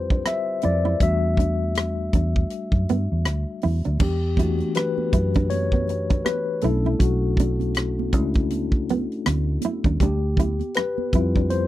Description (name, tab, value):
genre	R&B, neo-soul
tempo	80 BPM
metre	4/4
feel	swing 57% on 16ths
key	E dorian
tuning	A4 = 440 Hz
part	mellow tine electric piano	accompaniment	0.0-11.7 s	E3 to E5	-25 LUFS	left 4 dB	fast stereo tremolo
part	vintage muted fingered electric bass	bass	0.0-11.7 s	B1 to G2	-24 LUFS	equal	none
part	nylon-string guitar	second line	0.1-11.5 s	B3 to E4	-27 LUFS	right 6 dB	none
part	tight funk drum kit	drums	0.1-11.7 s	crash cymbal, hi-hat, kick drum, rim click	-22 LUFS	equal	none
part	congas	percussion	4.0-11.7 s	none	-34 LUFS	right 15 dB	none
room	little or no reverb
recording	dry, close 1970s-style studio recording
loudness	-20 LUFS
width	side -14 dB against mid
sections	0.0-4.0 A section; 4.0-11.7 A section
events	tine electric piano solo 0.0-4.0, 4.0-11.7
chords	0.0 Dm11; 1.0 Em11; 6.6 Bm11; 10.0 Dm11